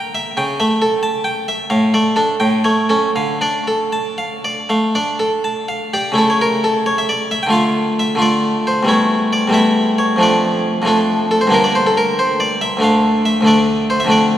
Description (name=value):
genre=classical, baroque-style suite movement for harpsichord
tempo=76-95 BPM (dotted quarters)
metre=12/8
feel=rubato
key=D minor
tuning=A4 = 440 Hz
part: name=harpsichord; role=solo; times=0.0-14.4 s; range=D2 to A5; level=-13 LUFS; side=equal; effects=none
room=wet cathedral reverb, RT60 6.9 s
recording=recorded in a church or concert hall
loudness=-13 LUFS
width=side -12 dB against mid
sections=0.0-6.2 A section; 6.2-14.4 A section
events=none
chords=0.4 A7/C#; 1.7 Dm/A; 2.4 A7; 3.1 Dm; 6.2 A/C#; 7.5 Dm; 8.9 A7/E; 10.2 Dm/F; 11.5 Gm; 12.8 Dm